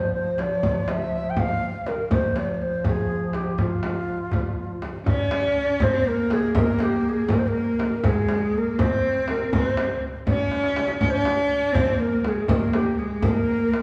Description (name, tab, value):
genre	Persian modal ensemble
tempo	81 BPM (dotted quarters)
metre	6/8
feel	straight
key	F avaz esfahan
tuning	A4 = 441 Hz
part	breathy reedy ney	melody	0.0-13.8 s	F4 to G5	-28 LUFS	equal	none
part	dark duduk	drone	0.0-5.1 s	F3	-33 LUFS	equal	none
part	frame drum	percussion	0.4-13.3 s	none	-30 LUFS	equal	none
part	tombak	percussion	0.4-13.8 s	none	-30 LUFS	equal	none
part	clear cello	second line	5.1-13.8 s	Ab3 to Db4+47c	-27 LUFS	equal	none
room	wet recital hall reverb, RT60 1.6 s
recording	recorded in a church or concert hall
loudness	-23 LUFS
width	mono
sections	0.0-5.1 A section; 5.1-13.8 B section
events	drum fill 10.5-11.0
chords	none